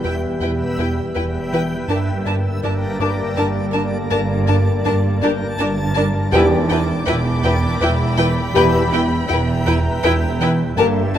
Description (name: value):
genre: cinematic, suspense film score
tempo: 81 BPM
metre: 3/4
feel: straight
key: E minor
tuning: A4 = 439 Hz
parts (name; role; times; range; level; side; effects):
- warm chamber violin section; melody; 0.0-11.2 s; G5 to A5; -26 LUFS; left 2 dB; none
- warm chamber violin section; second line; 0.0-11.2 s; Bb4 to B4; -23 LUFS; left 3 dB; none
- backwards swelling texture; sustained chords; 0.0-11.2 s; Bb4 to A5; -28 LUFS; equal; built-in reverb
- dark French horn section; sustained chords; 0.0-11.0 s; Bb3 to Bb4; -24 LUFS; left 3 dB; none
- mellow trombone section; sustained chords; 0.0-11.0 s; D3 to G3; -29 LUFS; right 3 dB; none
- round analog bass; riff; 0.0-11.2 s; E2 to G3; -24 LUFS; right 2 dB; none
- dark chamber cello section; bass; 0.0-11.2 s; E2 to G2; -23 LUFS; right 2 dB; none
- dark studio double bass section; bass; 0.0-11.2 s; E1 to G1; -24 LUFS; right 1 dB; none
- concert harp; texture; 0.0-11.2 s; D5 to D6; -28 LUFS; left 8 dB; none
- dark chamber viola section; accompaniment; 0.1-11.2 s; D4 to E4; -25 LUFS; right 1 dB; none
- timpani; percussion; 6.3-7.4 s; E2; -26 LUFS; left 1 dB; none
- warm chamber violin section; texture; 6.3-10.4 s; G5 to D6; -27 LUFS; left 1 dB; none
room: light reverb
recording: close, detailed microphones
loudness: -16 LUFS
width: side -10 dB against mid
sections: 0.0-11.2 A section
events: none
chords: 0.0 Em; 1.9 Gmadd9; 6.3 Em